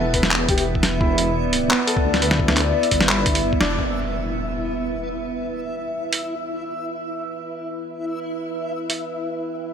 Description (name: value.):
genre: half-time drum and bass.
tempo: 173 BPM.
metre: 4/4.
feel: half-time.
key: E minor.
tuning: A4 = 441 Hz.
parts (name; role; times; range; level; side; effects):
dark analog pad; sustained chords; 0.0-9.7 s; E4 to G5; -28 LUFS; left 2 dB; chorus, sidechain pumping.
felt-muted upright piano; arpeggios; 0.0-3.8 s; B3 to B4; -26 LUFS; equal; digital delay.
dark detuned saw bass; bass; 0.0-3.8 s; E1 to D2; -24 LUFS; equal; none.
backwards swelling texture; texture; 0.0-9.7 s; B3 to E5; -26 LUFS; right 2 dB; built-in reverb.
boom bap sampler-style drum kit; drums; 0.1-3.7, 6.1-6.2, 8.9-9.0 s; handclaps, hi-hat, snare drum; -21 LUFS; equal; none.
electronic kick drum; drums; 0.1-3.6 s; none; -23 LUFS; equal; none.
breathy flute-like synth lead; melody; 0.5-0.6 s; G4; -29 LUFS; left 5 dB; wide subtle chorus, dub echo.
impact; sound effects; 3.8-5.2 s; none; -30 LUFS; left 1 dB; none.
room: moderate lush hall reverb, RT60 1.8 s, digital ambience.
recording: none.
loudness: -20 LUFS.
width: side -8 dB against mid.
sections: 0.0-3.8 A section; 3.8-9.7 B section.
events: drop 0.0-3.8; band accent 3.6; impact 3.8-5.2.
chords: 0.0 Em.